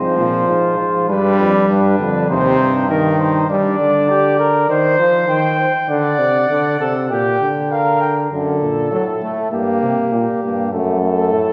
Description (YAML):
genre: classical, imitative canzona for brass ensemble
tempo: 100 BPM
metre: 4/4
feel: straight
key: unclear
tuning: A4 = 440 Hz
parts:
  - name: mellow trumpet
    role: melody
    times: 0.0-8.1 s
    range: Bb4 to G5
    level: -22 LUFS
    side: equal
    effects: none
  - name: mellow flugelhorn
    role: second line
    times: 0.0-11.5 s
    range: C4 to D5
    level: -22 LUFS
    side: equal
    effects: none
  - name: clear trombone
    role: accompaniment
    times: 0.0-11.5 s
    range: Bb2 to Bb3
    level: -20 LUFS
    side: equal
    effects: none
  - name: warm euphonium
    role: bass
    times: 0.0-3.5, 8.3-11.5 s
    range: Eb2 to C3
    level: -23 LUFS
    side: equal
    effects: none
room: wet recital hall reverb, RT60 1.7 s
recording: heard from further back in the room, nothing above 7.7 kHz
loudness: -16 LUFS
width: mono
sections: 0.0-8.3 A section; 8.3-11.5 B section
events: none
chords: 0.0 Fm/Ab; 1.1 G; 2.3 Cm/Eb; 3.5 Gm; 4.7 Cm/Eb; 5.9 D; 7.1 Gm/Bb; 8.3 D/F#; 9.5 Gm; 10.7 F#m